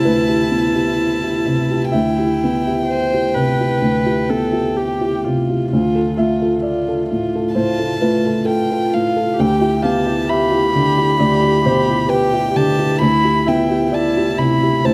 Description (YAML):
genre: neoclassical piano and strings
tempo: 65 BPM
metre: 4/4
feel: rubato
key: unclear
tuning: A4 = 440 Hz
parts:
  - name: rich violin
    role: melody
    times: 0.0-14.9 s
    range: F5 to B5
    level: -24 LUFS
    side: equal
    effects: none
  - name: felt-muted upright piano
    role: accompaniment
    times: 0.0-14.9 s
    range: D2 to F5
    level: -19 LUFS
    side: equal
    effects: none
  - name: warm viola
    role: accompaniment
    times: 0.0-14.9 s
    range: E4 to C5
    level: -23 LUFS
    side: equal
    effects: none
room: moderate large studio reverb, RT60 1.2 s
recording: dark, warm production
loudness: -17 LUFS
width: mono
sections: 0.0-14.9 A section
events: none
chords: 0.0 Cmaj7/D; 5.7 Dm; 9.4 Em7/D; 13.0 Cmaj7/D